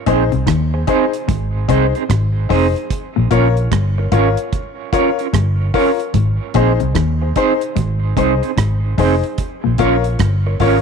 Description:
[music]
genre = roots reggae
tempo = 74 BPM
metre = 4/4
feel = swing 64% on 16ths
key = unclear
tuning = A4 = 440 Hz
[part]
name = clean electric guitar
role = accompaniment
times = 0.1-10.8 s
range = C4 to Db5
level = -20 LUFS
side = right 14 dB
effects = tremolo, tape echo
[part]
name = mellow electric guitar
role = riff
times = 0.1-10.8 s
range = F2 to Eb3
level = -22 LUFS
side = left 9 dB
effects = none
[part]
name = bright upright piano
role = stabs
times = 0.1-10.8 s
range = Eb4 to Db5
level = -20 LUFS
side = left 12 dB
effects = none
[part]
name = vintage muted fingered electric bass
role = bass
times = 0.1-10.8 s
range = F1 to Eb2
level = -16 LUFS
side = right 1 dB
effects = none
[part]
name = deep reggae drum kit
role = drums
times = 0.1-10.8 s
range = hi-hat, kick drum, rim click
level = -21 LUFS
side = right 4 dB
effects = none
[sound]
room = light reverb, small room ambience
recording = 1960s-style stereo with parts hard left and right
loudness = -14 LUFS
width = side -6 dB against mid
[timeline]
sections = 0.0-10.8 A section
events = none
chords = 0.0 Ab; 2.9 Bbm; 6.1 Ab; 9.4 Bbm

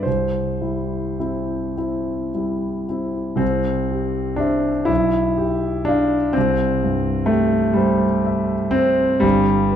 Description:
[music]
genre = classical, romantic nocturne for solo piano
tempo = 34-43 BPM (dotted quarters)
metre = 6/8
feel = rubato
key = C major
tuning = A4 = 440 Hz
[part]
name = warm concert grand piano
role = solo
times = 0.0-9.8 s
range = G1 to F5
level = -18 LUFS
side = equal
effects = none
[sound]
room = wet recital hall reverb, RT60 1.6 s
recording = dark, warm production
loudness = -18 LUFS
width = side -9 dB against mid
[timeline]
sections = 0.0-3.4 A section; 3.4-9.8 B section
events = none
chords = 0.1 C; 4.9 G7/B; 6.4 C; 9.2 N.C.

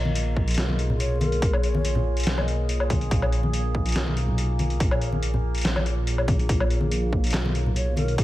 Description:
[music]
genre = deep dubstep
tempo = 142 BPM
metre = 4/4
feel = half-time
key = Bb phrygian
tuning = A4 = 440 Hz
[part]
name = overtone-sweeping drone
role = sustained chords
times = 0.0-8.2 s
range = Bb3 to Db5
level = -32 LUFS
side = equal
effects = chorus, built-in reverb
[part]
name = dark detuned saw bass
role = bass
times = 0.0-8.2 s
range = Bb1 to Cb2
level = -25 LUFS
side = equal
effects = none
[part]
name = congas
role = percussion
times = 0.1-8.1 s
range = none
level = -31 LUFS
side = left 2 dB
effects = none
[part]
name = trip hop sampler-style drum kit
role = drums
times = 0.2-8.2 s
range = handclaps, hi-hat, snare drum, woodblock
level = -29 LUFS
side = left 1 dB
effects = none
[part]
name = electronic kick drum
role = drums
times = 0.4-8.2 s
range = none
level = -24 LUFS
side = equal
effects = none
[part]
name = breathy mellow low ney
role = melody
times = 1.0-2.8, 7.8-8.2 s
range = Ab4 to Eb5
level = -34 LUFS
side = equal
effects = dub echo
[sound]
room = light reverb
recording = vinyl crackle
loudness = -21 LUFS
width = side -16 dB against mid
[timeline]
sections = 0.0-8.2 A section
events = none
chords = 0.0 Bbm

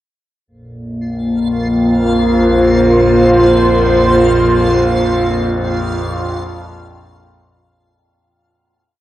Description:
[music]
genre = dark ambient drone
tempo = free time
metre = none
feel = none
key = unclear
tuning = A4 = 440 Hz
[part]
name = dark analog pad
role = sustained chords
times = 0.5-7.8 s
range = Bb3 to C5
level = -12 LUFS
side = equal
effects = chorus, shimmer reverb
[part]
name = overtone-sweeping drone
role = drone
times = 1.1-7.9 s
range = Bb1 to F2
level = -17 LUFS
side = equal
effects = chorus, built-in reverb
[part]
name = backwards swelling texture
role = texture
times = 1.5-7.8 s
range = F4 to F5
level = -21 LUFS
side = right 2 dB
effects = built-in reverb, shimmer reverb
[sound]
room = wet huge ambient reverb, RT60 7.4 s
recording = worn, warbling old tape, cassette tape, warbly pitch drift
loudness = -10 LUFS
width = side -14 dB against mid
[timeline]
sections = 0.5-7.8 A section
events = fade-in on synth drone 0.5-7.8; fade-out 4.2-7.8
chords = 0.5 Bbsus2

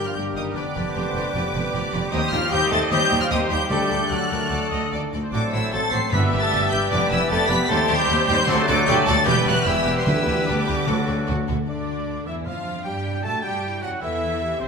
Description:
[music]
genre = classical, dramatic, fast romantic movement for symphony orchestra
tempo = 152 BPM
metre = 4/4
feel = straight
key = G major from 5.3 s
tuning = A4 = 440 Hz
[part]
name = clear symphonic violin section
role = melody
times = 0.0-14.7 s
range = C4 to C7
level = -26 LUFS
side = left 2 dB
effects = none
[part]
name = clear clarinet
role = second line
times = 0.0-14.7 s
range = C4 to D5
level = -33 LUFS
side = left 2 dB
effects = none
[part]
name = mellow cor anglais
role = second line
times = 0.0-14.7 s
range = C4 to A5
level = -31 LUFS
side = right 2 dB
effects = none
[part]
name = mellow large flute ensemble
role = second line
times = 0.0-14.7 s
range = C5 to C6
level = -31 LUFS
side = right 1 dB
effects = none
[part]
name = rich symphonic violin section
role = second line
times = 0.0-14.7 s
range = F#4 to A5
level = -34 LUFS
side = left 2 dB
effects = none
[part]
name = clear symphonic viola section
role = accompaniment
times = 0.0-14.7 s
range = C4 to E5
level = -29 LUFS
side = equal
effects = none
[part]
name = mellow bassoon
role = accompaniment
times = 0.0-14.7 s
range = C3 to A3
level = -34 LUFS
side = right 1 dB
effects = none
[part]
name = mellow French horn section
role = sustained chords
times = 0.0-14.7 s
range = C3 to A4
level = -31 LUFS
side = left 5 dB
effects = none
[part]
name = mellow trombone section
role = sustained chords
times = 0.0-14.7 s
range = C3 to C4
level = -32 LUFS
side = right 2 dB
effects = none
[part]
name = concert harp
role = arpeggios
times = 0.0-14.7 s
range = F2 to D6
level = -32 LUFS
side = left 8 dB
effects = none
[part]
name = clear trumpet section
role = stabs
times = 0.0-14.7 s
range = F#4 to A5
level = -30 LUFS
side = right 1 dB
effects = none
[part]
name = rich symphonic cello section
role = bass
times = 0.0-14.7 s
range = D2 to A3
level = -30 LUFS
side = right 2 dB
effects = none
[part]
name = warm studio double bass section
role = bass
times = 0.0-14.7 s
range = E1 to A2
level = -28 LUFS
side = right 3 dB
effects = none
[part]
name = timpani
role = percussion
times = 3.7-13.0 s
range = G2 to D3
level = -29 LUFS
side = equal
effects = none
[sound]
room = wet scoring stage reverb, RT60 1.8 s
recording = none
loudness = -19 LUFS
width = side -5 dB against mid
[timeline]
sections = 0.0-11.7 A section; 11.7-14.7 B section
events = none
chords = 0.0 Gm; 0.6 G7/F; 2.1 Cm/Eb; 3.7 D; 5.3 D7/A; 6.1 G; 6.9 G7/F; 7.7 Cm/Eb; 8.5 D7; 9.3 Em; 10.1 G/D; 10.9 D; 11.7 G/D; 12.5 G7/F; 13.2 C

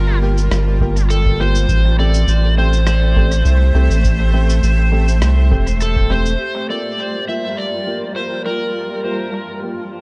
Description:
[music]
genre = ambient dub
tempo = 102 BPM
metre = 4/4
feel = swing 53% on 16ths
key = G dorian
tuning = A4 = 441 Hz
[part]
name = overdriven slide guitar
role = melody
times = 0.0-9.6 s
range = A4 to E5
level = -25 LUFS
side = equal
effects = tape echo
[part]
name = granular cloud pad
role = sustained chords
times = 0.0-10.0 s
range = G3 to A5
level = -30 LUFS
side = equal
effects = built-in reverb
[part]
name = round analog bass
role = bass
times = 0.0-6.4 s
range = E1 to C2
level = -16 LUFS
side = equal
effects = none
[part]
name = warm upright piano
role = stabs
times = 0.2-9.8 s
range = A3 to G4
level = -29 LUFS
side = equal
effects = low-pass filter, dub echo
[part]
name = electronic cabasa and rim click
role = drums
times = 0.4-6.4 s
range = none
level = -30 LUFS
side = equal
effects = dub echo
[part]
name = electronic kick drum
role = drums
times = 0.8-6.1 s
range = none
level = -22 LUFS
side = equal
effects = none
[part]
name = vibraphone with hard mallets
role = arpeggios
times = 6.4-10.0 s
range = G4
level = -34 LUFS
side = equal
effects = low-pass filter, tape echo
[sound]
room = little or no reverb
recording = nothing above 10.4 kHz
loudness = -16 LUFS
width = mono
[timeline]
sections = 0.0-6.4 A section; 6.4-10.0 B section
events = filter sweep on vibraphone 6.4-10.0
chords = 0.0 Gm7; 1.7 Am7; 6.4 Gm7

